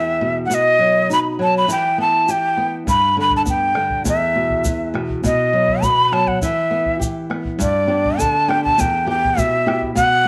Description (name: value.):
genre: andean folk, Andean ensemble.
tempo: 102 BPM.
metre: 2/4.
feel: straight.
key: E minor.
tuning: A4 = 439 Hz.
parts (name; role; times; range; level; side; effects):
breathy bright quena; melody; 0.0-10.3 s; D5 to B5; -19 LUFS; equal; slapback echo.
flamenco guitar; accompaniment; 0.0-10.3 s; E2 to G4; -24 LUFS; equal; none.
egg shaker; percussion; 0.5-10.1 s; none; -33 LUFS; equal; none.
bombo; percussion; 2.9-10.1 s; none; -28 LUFS; equal; none.
room: light reverb.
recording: none.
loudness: -18 LUFS.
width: mono.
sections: 0.0-7.6 A section; 7.6-10.3 A section.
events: none.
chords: 0.0 E5; 0.5 B; 1.7 Em; 2.9 G; 4.1 E5; 5.2 B; 6.4 Em; 7.6 G; 8.8 Em.